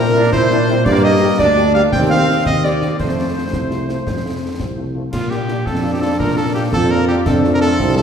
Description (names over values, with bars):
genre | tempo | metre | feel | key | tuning
military-style march for wind band | 112 BPM (dotted quarters) | 6/8 | straight | Bb major | A4 = 440 Hz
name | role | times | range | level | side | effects
warm cornet | melody | 0.0-8.0 s | F4 to G5 | -21 LUFS | equal | none
mellow woodwind section | second line | 0.0-8.0 s | F4 to G5 | -23 LUFS | equal | none
mellow French horn section | accompaniment | 0.0-8.0 s | G3 to G4 | -26 LUFS | left 4 dB | none
dark trombone section | sustained chords | 0.0-8.0 s | F3 to E4 | -22 LUFS | right 2 dB | none
mellow tuba | bass | 0.0-8.0 s | C2 to Bb2 | -18 LUFS | equal | none
concert snare drum, concert bass drum and clash cymbals | drums | 0.3-8.0 s | none | -24 LUFS | left 1 dB | none
warm euphonium | second line | 5.7-8.0 s | C4 to F4 | -19 LUFS | right 1 dB | none
room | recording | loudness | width
wet scoring stage reverb, RT60 1.8 s | heard from further back in the room | -14 LUFS | side -7 dB against mid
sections
0.0-5.1 A section; 5.1-8.0 B section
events
none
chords
0.0 C7/Bb; 0.9 Gm; 1.9 Cm7/Eb; 3.0 F; 5.1 Bb; 7.3 F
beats
0.33 | 0.86 1.39 | 1.93 2.46 | 3.00 3.53 | 4.06 4.60 | 5.13 5.66 | 6.20 6.73 | 7.27 7.80